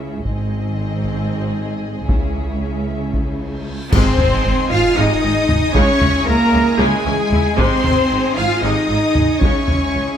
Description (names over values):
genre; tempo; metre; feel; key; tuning
cinematic, epic orchestral film score; 230 BPM (eighths); 7/8; straight; Ab major; A4 = 440 Hz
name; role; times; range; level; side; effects
rich symphonic violin section; melody; 0.0-10.2 s; Eb5 to F6; -25 LUFS; left 4 dB; none
warm symphonic violin section; second line; 0.0-10.2 s; Ab4 to F5; -26 LUFS; left 3 dB; none
clear symphonic viola section; accompaniment; 0.0-10.0 s; C3 to Fb4; -26 LUFS; right 1 dB; none
mellow French horn section; sustained chords; 0.0-10.2 s; Ab3 to F4; -23 LUFS; left 3 dB; none
rich symphonic cello section; bass; 0.0-10.2 s; Ab2 to F4; -22 LUFS; right 2 dB; none
rich symphonic double bass section; bass; 0.0-10.0 s; Ab1 to Db2; -22 LUFS; right 2 dB; none
cymbal swell, clash cymbals and concert bass drum; percussion; 0.2-4.9 s; none; -25 LUFS; equal; none
solo taiko drums; drums; 0.3-9.9 s; none; -19 LUFS; equal; none
reverse cymbal and sub drop; sound effects; 3.6-5.8 s; none; -30 LUFS; equal; none
silver concert flute; second line; 3.9-10.2 s; Ab4 to F5; -25 LUFS; left 2 dB; none
pipe organ, strings celeste; sustained chords; 3.9-10.2 s; Ab3 to Ab5; -27 LUFS; left 2 dB; none
room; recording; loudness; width
moderate scoring stage reverb, RT60 1.6 s; none; -14 LUFS; side -9 dB against mid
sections
0.0-3.9 A section; 3.9-10.2 B section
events
reverse cymbal 3.6-3.9; band accent 3.9-4.4; impact 3.9-5.8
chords
0.3 Ab; 2.1 Dbm; 3.9 Ab; 5.8 Dbm; 7.6 Ab; 9.4 Dbm